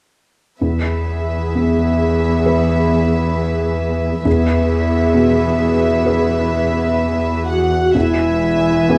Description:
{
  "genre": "cinematic, emotional film score for orchestra",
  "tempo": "65 BPM",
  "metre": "4/4",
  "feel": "rubato",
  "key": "unclear",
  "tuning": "A4 = 440 Hz",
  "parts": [
    { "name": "warm studio violin section", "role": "second line", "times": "0.6-9.0 s", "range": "B4 to F#5", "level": "-24 LUFS", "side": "equal", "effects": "none" },
    { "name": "dark symphonic viola section", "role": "accompaniment", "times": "0.6-9.0 s", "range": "B3 to G#5", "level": "-24 LUFS", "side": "equal", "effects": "none" },
    { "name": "felt-muted upright piano", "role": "accompaniment", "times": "0.6-9.0 s", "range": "E2 to B4", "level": "-22 LUFS", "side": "equal", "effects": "none" },
    { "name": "warm studio cello section", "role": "bass", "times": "0.6-9.0 s", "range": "E2", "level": "-22 LUFS", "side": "equal", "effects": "none" },
    { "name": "warm symphonic violin section", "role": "melody", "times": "7.5-9.0 s", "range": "E5 to F#5", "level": "-28 LUFS", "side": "equal", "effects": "none" },
    { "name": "dark French horn section", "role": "sustained chords", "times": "7.5-9.0 s", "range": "E4 to F#4", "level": "-18 LUFS", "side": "equal", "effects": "none" },
    { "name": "rich symphonic double bass section", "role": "bass", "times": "7.9-9.0 s", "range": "E1", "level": "-26 LUFS", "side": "equal", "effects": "none" }
  ],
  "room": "moderate scoring stage reverb, RT60 1.7 s",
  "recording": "dark, warm production",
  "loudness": "-17 LUFS",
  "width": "mono",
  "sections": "0.6-7.9 A section; 7.9-9.0 B section",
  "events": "none",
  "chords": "0.6 E"
}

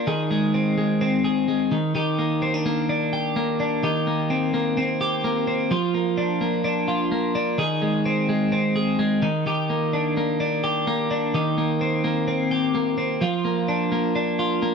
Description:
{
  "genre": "indie pop",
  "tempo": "128 BPM",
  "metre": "4/4",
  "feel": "straight",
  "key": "C minor",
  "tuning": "A4 = 440 Hz",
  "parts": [
    { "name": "twelve-string electric guitar", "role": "solo", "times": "0.0-14.7 s", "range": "Eb3 to Ab4", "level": "-20 LUFS", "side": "equal", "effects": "none" }
  ],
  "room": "light reverb",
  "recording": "none",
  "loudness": "-20 LUFS",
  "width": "side -5 dB against mid",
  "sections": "0.0-14.7 A section",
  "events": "none",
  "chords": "0.1 Ab; 1.7 Ebmaj7; 3.8 Cm7; 5.7 Bb; 7.6 Ab; 9.2 Ebmaj7; 11.3 Cm7; 13.2 Bb"
}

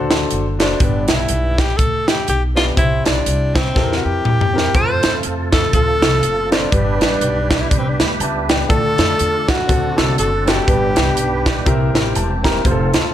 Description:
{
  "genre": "uptempo gospel",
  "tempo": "122 BPM",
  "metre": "4/4",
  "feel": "swing 58% on 8ths",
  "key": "C major",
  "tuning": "A4 = 441 Hz",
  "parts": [
    { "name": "breathy tenor saxophone", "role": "melody", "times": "0.0-12.0 s", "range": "C4 to C5", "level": "-20 LUFS", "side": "left 1 dB", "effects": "none" },
    { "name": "warm grand piano", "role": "accompaniment", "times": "0.0-13.1 s", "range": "G2 to Bb5", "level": "-22 LUFS", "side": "left 2 dB", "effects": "none" },
    { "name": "upright bass", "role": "bass", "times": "0.0-13.1 s", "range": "E1 to F2", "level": "-21 LUFS", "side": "equal", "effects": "none" },
    { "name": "crisp fusion drum kit", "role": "drums", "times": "0.1-13.0 s", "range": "hi-hat, kick drum, snare drum, toms", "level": "-17 LUFS", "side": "equal", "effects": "none" },
    { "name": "tonewheel organ", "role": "sustained chords", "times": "4.8-13.1 s", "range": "C3 to B4", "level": "-24 LUFS", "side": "right 4 dB", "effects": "fast rotary speaker, chorus vibrato" }
  ],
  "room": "light reverb, small room ambience",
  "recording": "none",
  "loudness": "-14 LUFS",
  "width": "side -11 dB against mid",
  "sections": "0.0-13.1 A section",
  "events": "drum fill 3.8-4.8; grand piano fill 11.2-12.6",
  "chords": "0.0 D7; 0.8 G; 2.8 C; 3.8 C7/E; 4.8 F; 6.7 G; 8.7 Dm; 9.7 D7; 10.7 G; 11.7 C7"
}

